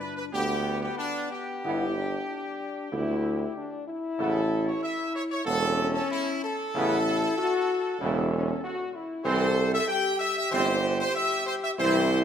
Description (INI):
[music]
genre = classical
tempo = 95 BPM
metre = 4/4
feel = straight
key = unclear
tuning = A4 = 437 Hz
[part]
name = clear trumpet section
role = melody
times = 0.0-12.2 s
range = D4 to G5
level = -29 LUFS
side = equal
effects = none
[part]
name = warm French horn section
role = sustained chords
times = 0.0-12.2 s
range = B3 to A4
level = -30 LUFS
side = left 4 dB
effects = none
[part]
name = clear trombone section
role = sustained chords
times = 0.3-12.0 s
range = C#3 to C4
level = -33 LUFS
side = right 3 dB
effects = none
[part]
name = warm tuba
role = bass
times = 0.3-12.2 s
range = E1 to D2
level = -30 LUFS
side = right 3 dB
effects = none
[sound]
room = moderate scoring stage reverb, RT60 1.6 s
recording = none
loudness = -25 LUFS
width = side -8 dB against mid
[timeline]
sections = 0.0-12.2 A section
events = none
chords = 0.0 G; 4.2 Aadd9; 9.2 C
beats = 0.34 0.99 | 1.65 2.29 2.93 3.57 | 4.20 4.82 5.46 6.10 | 6.74 7.38 8.00 8.62 | 9.25 9.88 10.52 11.15 | 11.79